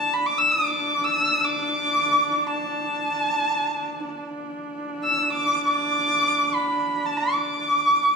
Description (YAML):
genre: mongolian traditional, Mongolian folk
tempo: free time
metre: none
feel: none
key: unclear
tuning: A4 = 440 Hz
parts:
  - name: rich erhu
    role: melody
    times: 0.0-8.2 s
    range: A5 to E6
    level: -21 LUFS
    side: equal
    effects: none
  - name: warm horsehead fiddle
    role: drone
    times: 0.0-8.2 s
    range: D4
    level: -30 LUFS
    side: right 1 dB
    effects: none
room: wet large studio reverb, RT60 1.4 s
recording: band playing live in one room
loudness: -20 LUFS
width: side -5 dB against mid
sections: 0.0-8.2 A section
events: none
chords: none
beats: free time